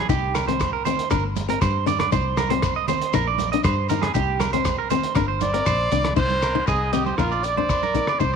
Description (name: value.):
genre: highlife guitar band.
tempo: 118 BPM.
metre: 4/4.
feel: straight.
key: C minor.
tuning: A4 = 440 Hz.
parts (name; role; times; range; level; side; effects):
nylon-string guitar; accompaniment; 0.0-8.4 s; C4 to Eb4; -27 LUFS; left 15 dB; none.
electric guitar at the edge of break-up; arpeggios; 0.0-8.4 s; G4 to Eb5; -24 LUFS; right 12 dB; slapback echo.
fingered electric bass; bass; 0.0-8.4 s; G1 to G2; -27 LUFS; left 1 dB; none.
cloth-damped thuddy drum kit; drums; 0.1-8.3 s; crash cymbal, hi-hat, kick drum, rim click; -28 LUFS; left 1 dB; none.
shekere; percussion; 0.1-8.4 s; none; -34 LUFS; left 7 dB; none.
agogo bells; percussion; 0.3-8.2 s; none; -34 LUFS; left 13 dB; none.
congas; percussion; 0.4-8.1 s; none; -31 LUFS; right 11 dB; none.
clear trumpet; melody; 5.4-8.4 s; F4 to D5; -24 LUFS; equal; none.
room: light reverb, small room ambience.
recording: 1960s-style stereo with parts hard left and right.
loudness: -19 LUFS.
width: side -6 dB against mid.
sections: 0.0-6.2 A section; 6.2-8.4 B section.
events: none.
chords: 0.1 Cm; 1.1 Gsus4; 2.1 Cm; 3.1 Bbsus4; 4.2 Cm; 5.2 Gsus4; 6.2 Cm; 7.2 Bbsus4.